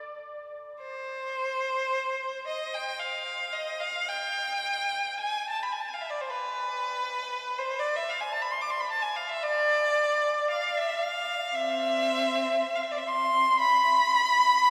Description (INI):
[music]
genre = classical, free, expressive piece for unaccompanied violin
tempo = 56 BPM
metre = 4/4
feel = uneven beats, rubato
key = unclear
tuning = A4 = 443 Hz
[part]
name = clear violin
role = solo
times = 0.8-14.7 s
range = C4 to D6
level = -28 LUFS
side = equal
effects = none
[sound]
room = wet cathedral reverb, RT60 6.1 s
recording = none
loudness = -28 LUFS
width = mono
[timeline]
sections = 0.0-14.7 A section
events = none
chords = none